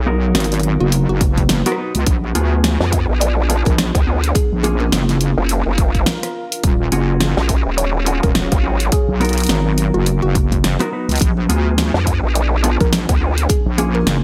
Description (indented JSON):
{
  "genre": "glitch hop",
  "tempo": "105 BPM",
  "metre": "4/4",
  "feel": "swing 58% on 16ths",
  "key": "unclear",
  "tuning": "A4 = 441 Hz",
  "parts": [
    { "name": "woody wave-folded pluck", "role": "melody", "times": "0.0-14.2 s", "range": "Gb4 to D5", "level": "-28 LUFS", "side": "equal", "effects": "chorus, delay" },
    { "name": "wobble bass", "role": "bass", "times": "0.0-14.2 s", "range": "Eb1 to D2", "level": "-19 LUFS", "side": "equal", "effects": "chorus" },
    { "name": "deep dark ambient pad", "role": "texture", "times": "0.0-14.2 s", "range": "Gb3 to F5", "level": "-30 LUFS", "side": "equal", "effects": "none" },
    { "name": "mellow electric guitar", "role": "stabs", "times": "0.1-14.2 s", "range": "Bb3 to Cb5", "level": "-26 LUFS", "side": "equal", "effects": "sidechain pumping, delay" },
    { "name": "pop drum kit", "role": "drums", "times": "0.3-14.2 s", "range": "hi-hat, rim click, snare drum", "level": "-23 LUFS", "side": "equal", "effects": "gated reverb" },
    { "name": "electronic kick drum", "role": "drums", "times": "1.2-13.6 s", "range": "none", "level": "-20 LUFS", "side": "equal", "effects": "none" },
    { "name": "vowel-sweep wobble bass", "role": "bass", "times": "2.8-13.5 s", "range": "Eb1 to F2", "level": "-19 LUFS", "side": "equal", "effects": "chorus" }
  ],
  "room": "little or no reverb",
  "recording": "bright 1980s-style digital production",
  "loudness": "-17 LUFS",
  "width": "mono",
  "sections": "0.0-14.2 A section",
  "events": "none",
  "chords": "0.0 Abm7; 2.1 Bb7b9; 4.3 Gbmaj9; 6.6 Ebm11; 8.9 Abm7; 11.2 Bb7b9; 13.5 Gbmaj9"
}